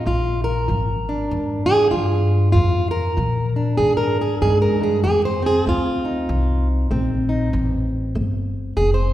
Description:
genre	acoustic country blues, solo or duo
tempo	96 BPM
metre	4/4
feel	swing 61% on 8ths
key	unclear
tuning	A4 = 439 Hz
part	fingerpicked plugged-in steel-string acoustic guitar	melody	0.0-9.1 s	F2 to C5	-20 LUFS	right 1 dB	none
part	upright bass	bass	0.0-9.1 s	F1 to Bb2	-21 LUFS	equal	none
room	wet scoring stage reverb, RT60 1.6 s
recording	recorded in a church or concert hall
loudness	-17 LUFS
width	side -13 dB against mid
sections	0.0-9.1 A section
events	none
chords	0.1 Bb7; 5.0 F7

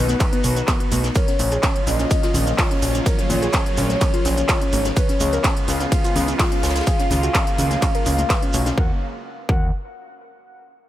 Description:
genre	progressive house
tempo	126 BPM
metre	4/4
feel	straight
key	Eb minor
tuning	A4 = 439 Hz
part	soft octave-layered synth lead	melody	0.0-9.7 s	B4 to Gb5	-27 LUFS	left 1 dB	chorus, phaser, dub echo
part	supersaw pad	sustained chords	0.0-9.0 s	B2 to Gb4	-28 LUFS	equal	phaser, sidechain pumping
part	soft round pluck	arpeggios	0.0-9.7 s	B3 to Cb5	-27 LUFS	equal	chorus, sidechain pumping, dub echo
part	fat analog bass	bass	0.0-9.7 s	Ab1 to Eb2	-22 LUFS	equal	sidechain pumping
part	big-room dance drum kit	drums	0.1-8.8 s	handclaps, hi-hat, ride cymbal	-26 LUFS	equal	overdrive
part	tight funk drum kit	drums	0.1-8.8 s	hi-hat, shaker, snare drum	-33 LUFS	left 1 dB	sidechain pumping on hats, high-pass filter on hats, high-pass filter on snare, sidechain pumping on perc, high-pass filter on perc, high-pass filter on room
part	congas	percussion	0.1-8.6 s	none	-31 LUFS	left 2 dB	sidechain pumping on perc
part	shekere	percussion	0.1-8.8 s	none	-33 LUFS	right 4 dB	none
part	electronic kick drum	drums	0.2-9.6 s	none	-20 LUFS	equal	overdrive
room	small room ambience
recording	none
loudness	-17 LUFS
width	side -13 dB against mid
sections	0.0-8.8 A section; 8.8-10.7 B section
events	drop 0.0-8.8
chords	0.0 B; 1.2 Gbmaj7/Bb; 5.0 Db7; 8.8 Ebm7

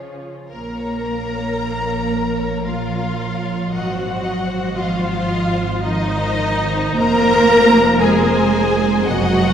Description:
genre	classical, slow romantic movement for string orchestra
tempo	57 BPM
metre	3/4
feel	rubato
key	Bb minor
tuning	A4 = 441 Hz
part	rich studio violin section	second line	0.0-9.5 s	F4 to Bb5	-24 LUFS	left 2 dB	none
part	rich studio viola section	accompaniment	0.0-9.5 s	F3 to Bb4	-20 LUFS	equal	none
part	warm studio cello section	bass	0.0-9.5 s	Db3 to Bb3	-20 LUFS	right 2 dB	none
part	clear studio violin section	melody	0.5-9.5 s	Bb4 to Eb5	-28 LUFS	left 4 dB	none
part	rich studio double bass section	bass	0.5-9.5 s	F1 to Bb1	-24 LUFS	right 2 dB	none
room	wet cathedral reverb, RT60 4.5 s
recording	none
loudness	-15 LUFS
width	side -8 dB against mid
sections	0.5-9.5 A section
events	none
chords	0.0 Db; 0.5 Bbm; 3.7 Ab; 7.0 Fm

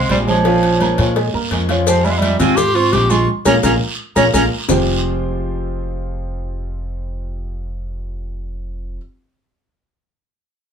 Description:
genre	latin, Cuban son and guajira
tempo	170 BPM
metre	4/4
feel	straight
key	F minor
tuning	A4 = 440 Hz
part	bright clarinet	melody	0.0-4.4 s	F3 to G4	-17 LUFS	equal	none
part	breathy bright jazz flute	second line	0.0-4.4 s	C5 to Db6	-22 LUFS	right 4 dB	none
part	dark baby grand piano	arpeggios	0.0-9.0 s	F3 to F6	-22 LUFS	right 2 dB	none
part	upright bass	bass	0.0-9.0 s	F1 to Bb2	-22 LUFS	equal	none
part	picked old ladder-braced acoustic guitar	accompaniment	0.1-9.0 s	F2 to G4	-23 LUFS	left 3 dB	none
part	congas	percussion	0.1-4.8 s	none	-24 LUFS	right 3 dB	none
part	cowbell and bongos	percussion	0.1-4.8 s	none	-24 LUFS	left 7 dB	none
part	guiro	percussion	0.1-4.8 s	none	-27 LUFS	right 4 dB	none
part	maracas	percussion	1.9-4.8 s	none	-27 LUFS	left 5 dB	none
room	moderate studio ambience, RT60 0.5 s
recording	heard from further back in the room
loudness	-14 LUFS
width	side -7 dB against mid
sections	0.0-4.7 A section; 4.7-7.5 B section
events	drum fill 3.3-4.7; band accent 3.3-4.7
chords	0.5 Bbm7; 1.9 Fmadd9; 3.3 Bbm7; 4.7 Fmadd9

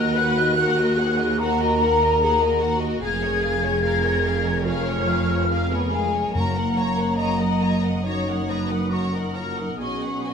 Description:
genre	cinematic, emotional film score for orchestra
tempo	67-74 BPM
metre	4/4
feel	rubato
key	F# major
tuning	A4 = 438 Hz
part	rich symphonic violin section	melody	0.0-10.3 s	C#5 to A#5	-34 LUFS	left 5 dB	none
part	mellow hollow flute section	second line	0.0-10.3 s	G#5 to G#6	-25 LUFS	left 2 dB	none
part	rich symphonic violin section	second line	0.0-10.3 s	F#4 to D#5	-32 LUFS	left 3 dB	none
part	rich symphonic viola section	accompaniment	0.0-10.3 s	F#4 to D#5	-32 LUFS	equal	none
part	mellow French horn section	sustained chords	0.0-10.3 s	G#3 to A#4	-26 LUFS	left 3 dB	none
part	rich symphonic cello section	bass	0.0-10.3 s	D#2 to B2	-27 LUFS	right 2 dB	none
part	rich symphonic double bass section	bass	0.0-10.3 s	E#1 to D#2	-27 LUFS	right 4 dB	none
part	timpani	percussion	6.3-7.6 s	F#2	-28 LUFS	left 2 dB	none
room	moderate scoring stage reverb, RT60 1.6 s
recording	none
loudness	-19 LUFS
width	side -6 dB against mid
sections	0.0-10.3 A section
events	none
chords	0.0 D#m; 3.0 A#m7/E#; 6.3 F#; 9.8 B6

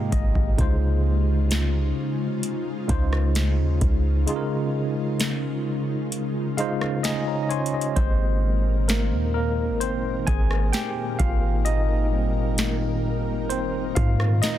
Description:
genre	contemporary R&B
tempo	65 BPM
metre	4/4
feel	straight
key	Ab major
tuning	A4 = 440 Hz
part	bright tine electric piano	accompaniment	0.0-14.6 s	Ab2 to C6	-26 LUFS	equal	medium stereo tremolo
part	ethereal airy pad	sustained chords	0.0-14.6 s	Bb2 to Bb4	-30 LUFS	left 1 dB	ensemble chorus, built-in reverb
part	downlifter	sound effects	0.0-0.6 s	none	barely audible	none	none
part	warm 808-style bass	bass	0.1-14.4 s	Ab1 to Ab2	-23 LUFS	equal	none
part	booming analog drum machine	drums	0.1-14.6 s	hi-hat, kick drum, rim click, snare drum	-25 LUFS	equal	overdrive
room	digital ambience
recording	dense, heavily limited modern master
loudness	-21 LUFS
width	side -12 dB against mid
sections	0.0-8.0 A section; 8.0-14.6 A section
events	tine electric piano fill 0.0-0.6, 6.1-8.0; break 4.3-8.0; tine electric piano solo 8.0-14.6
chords	0.0 Abmaj9; 0.6 Dbmaj9; 8.0 Abmaj9

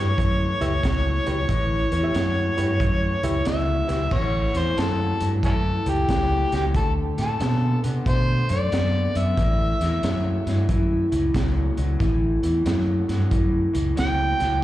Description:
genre	electric blues shuffle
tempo	91 BPM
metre	4/4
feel	swing 65% on 8ths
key	A mixolydian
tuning	A4 = 440 Hz
part	overdriven harmonica	melody	0.0-14.6 s	C#4 to G5	-26 LUFS	left 1 dB	slapback echo, tape echo
part	overdriven reed electric piano	accompaniment	0.0-4.0 s	E4 to E5	-32 LUFS	right 2 dB	slapback echo
part	electric guitar through a small old amp	riff	0.0-14.6 s	A2 to B3	-27 LUFS	left 1 dB	spring reverb, slapback echo
part	fingered electric bass	bass	0.0-14.6 s	A1 to C3	-23 LUFS	equal	none
part	crunchy breakbeat drum kit	drums	0.2-14.5 s	crash cymbal, hi-hat, kick drum, snare drum	-27 LUFS	equal	none
room	small room ambience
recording	live gig heard through the venue's PA, club reverb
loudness	-20 LUFS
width	side -14 dB against mid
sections	0.0-4.1 A section; 4.1-14.6 A section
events	none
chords	0.0 A9; 4.1 A7; 6.7 D; 9.4 A

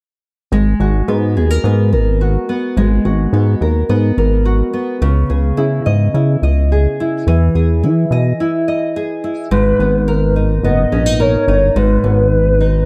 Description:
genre	indie pop, bedroom pop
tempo	107 BPM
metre	4/4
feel	straight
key	G# minor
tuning	A4 = 441 Hz
part	nylon-string guitar	accompaniment	0.5-12.9 s	G#2 to D#5	-19 LUFS	equal	analog chorus, warbly pitch drift
part	chorused synth bass	bass	0.5-12.8 s	F#1 to E3	-16 LUFS	equal	none
part	warbly nostalgic lead	melody	9.5-12.9 s	B4 to D#5	-18 LUFS	equal	tremolo, analog chorus, digital delay
room	light reverb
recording	none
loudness	-15 LUFS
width	mono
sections	0.5-9.5 A section; 9.5-12.9 B section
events	break 8.4-9.5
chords	0.5 G#m9; 5.0 C#madd9; 7.3 Emaj7; 9.5 G#madd9

